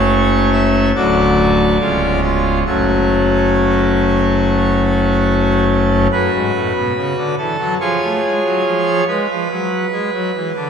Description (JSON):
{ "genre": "classical, chorale-style piece for pipe organ", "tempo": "70 BPM", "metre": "4/4", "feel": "straight", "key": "F# minor", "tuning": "A4 = 436 Hz", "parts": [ { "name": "pipe organ, full organ", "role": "solo", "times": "0.0-10.7 s", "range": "C#1 to E5", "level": "-13 LUFS", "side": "equal", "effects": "none" } ], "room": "wet church reverb, RT60 3.1 s", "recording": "minimal, uncompressed stereo recording", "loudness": "-13 LUFS", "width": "side -7 dB against mid", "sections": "0.0-6.1 A section; 6.1-10.7 B section", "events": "none", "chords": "0.0 F#m; 1.0 D; 1.8 C#; 2.7 F#m; 7.8 C#/E#; 9.5 N.C." }